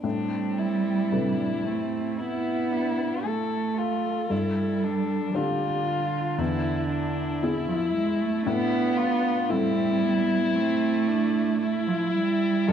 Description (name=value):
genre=neoclassical piano and strings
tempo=57 BPM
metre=4/4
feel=rubato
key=A minor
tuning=A4 = 442 Hz
part: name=dark violin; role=melody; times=0.0-12.7 s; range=D4 to A4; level=-28 LUFS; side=left 6 dB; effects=none
part: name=dark cello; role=second line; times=0.0-12.7 s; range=D3 to B3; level=-26 LUFS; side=right 5 dB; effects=none
part: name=dark viola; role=accompaniment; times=0.0-12.7 s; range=B3 to A4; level=-33 LUFS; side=right 3 dB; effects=none
part: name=felt-muted upright piano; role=accompaniment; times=0.0-12.7 s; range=E2 to B4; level=-32 LUFS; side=left 4 dB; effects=none
room=light reverb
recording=dark, warm production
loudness=-23 LUFS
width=side -8 dB against mid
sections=0.0-12.7 A section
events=none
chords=0.0 Amadd9; 4.3 Gsus2; 6.4 E7; 8.5 Amadd9